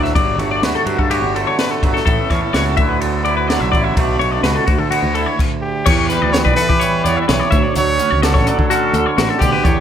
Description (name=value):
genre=math rock and midwest emo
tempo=126 BPM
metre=4/4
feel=straight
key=D major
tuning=A4 = 445 Hz
part: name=twangy electric guitar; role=accompaniment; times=0.0-9.8 s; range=D2 to F#4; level=-20 LUFS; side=right 5 dB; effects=none
part: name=twelve-string electric guitar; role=arpeggios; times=0.0-9.8 s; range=F#4 to E5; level=-19 LUFS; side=left 6 dB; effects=none
part: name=fuzz fingered electric bass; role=bass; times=0.0-9.8 s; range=G1 to E3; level=-20 LUFS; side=equal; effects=overdrive
part: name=compact cocktail drum kit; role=drums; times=0.0-9.8 s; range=crash cymbal, hi-hat, kick drum, ride cymbal, snare drum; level=-19 LUFS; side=equal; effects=none
part: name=warm trumpet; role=melody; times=5.6-9.8 s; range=G4 to D5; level=-19 LUFS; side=right 2 dB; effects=none
room=moderate large studio reverb, RT60 1.2 s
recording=band playing live in one room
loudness=-13 LUFS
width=side -9 dB against mid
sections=0.0-5.9 A section; 5.9-9.8 B section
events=none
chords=0.2 Gmaj9; 2.1 Aadd9; 2.8 D69; 4.0 Bm7; 4.7 D6; 5.9 Em7; 7.5 Dmaj7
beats=| 0.15 0.63 1.11 1.58 | 2.06 2.54 3.01 3.49 | 3.96 4.44 4.91 5.39 | 5.86 6.34 6.81 7.29 | 7.76 8.23 8.71 9.18 | 9.65